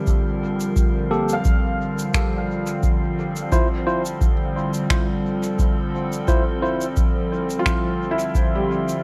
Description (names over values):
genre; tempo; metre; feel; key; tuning
ambient dub; 87 BPM; 4/4; swing 54% on 16ths; D minor; A4 = 440 Hz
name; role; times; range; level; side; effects
warbly tape-like pad; sustained chords; 0.0-9.0 s; D3 to Bb4; -28 LUFS; equal; chorus, built-in reverb
felt-muted upright piano; arpeggios; 0.0-9.0 s; G3 to F5; -31 LUFS; equal; dub echo
drifting glass-harmonics texture; texture; 0.0-9.0 s; F3 to F4; -33 LUFS; equal; chorus, built-in reverb
electronic kick drum; drums; 0.1-8.5 s; none; -23 LUFS; equal; none
shaker and finger snaps; drums; 0.1-9.0 s; none; -30 LUFS; equal; dub echo
bright tine electric piano; stabs; 1.1-6.9 s; Bb3 to C5; -29 LUFS; equal; dub echo
room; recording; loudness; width
light reverb, small room ambience; echo-heavy mix; -21 LUFS; mono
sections
0.0-9.0 A section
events
none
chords
0.0 Gm; 3.5 Dm7